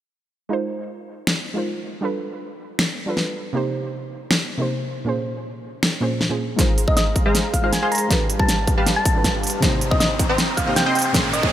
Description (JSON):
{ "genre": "future bass", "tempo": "158 BPM", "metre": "4/4", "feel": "half-time", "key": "Ab major", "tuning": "A4 = 442 Hz", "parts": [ { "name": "soft round pluck", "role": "accompaniment", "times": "0.5-11.5 s", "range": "Bb2 to C6", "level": "-26 LUFS", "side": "right 2 dB", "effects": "chorus, sidechain pumping" }, { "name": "big-room dance drum kit", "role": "drums", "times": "1.3-11.4 s", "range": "finger snaps, hi-hat, snare drum", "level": "-22 LUFS", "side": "equal", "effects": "studio reverb" }, { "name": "supersaw stab", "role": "riff", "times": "6.6-11.5 s", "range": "G3 to C6", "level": "-24 LUFS", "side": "equal", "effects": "sidechain pumping, low-pass filter" }, { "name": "electronic kick drum", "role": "drums", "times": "6.6-11.5 s", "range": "none", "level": "-21 LUFS", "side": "equal", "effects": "studio reverb" }, { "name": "riser", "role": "sound effects", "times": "7.9-11.5 s", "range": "none", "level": "-29 LUFS", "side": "equal", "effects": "none" }, { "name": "thumb-piano-like synth pluck", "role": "melody", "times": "6.9-11.5 s", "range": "Eb5 to Bb5", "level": "-24 LUFS", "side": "equal", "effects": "chorus, sidechain pumping, dub echo" } ], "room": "light reverb", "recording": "high-pass filter", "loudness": "-18 LUFS", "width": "side -12 dB against mid", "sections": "0.5-6.6 A section; 6.6-11.5 B section", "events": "build-up 6.6-11.5; drum fill 6.6-11.5; filter sweep on supersaw synth 6.6-11.5; filter sweep 6.6-11.5; riser 7.9-11.5", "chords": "0.5 Ab69; 2.0 G7; 3.5 Cm7; 5.1 Bbm9; 6.6 Ab69; 8.1 G7; 9.6 Cm7", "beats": "| 0.51 0.89 1.27 1.65 | 2.03 2.41 2.79 3.17 | 3.55 3.93 4.31 4.69 | 5.07 5.45 5.83 6.21 | 6.59 6.97 7.35 7.73 | 8.11 8.49 8.87 9.25 | 9.63 10.01 10.38 10.77 | 11.14" }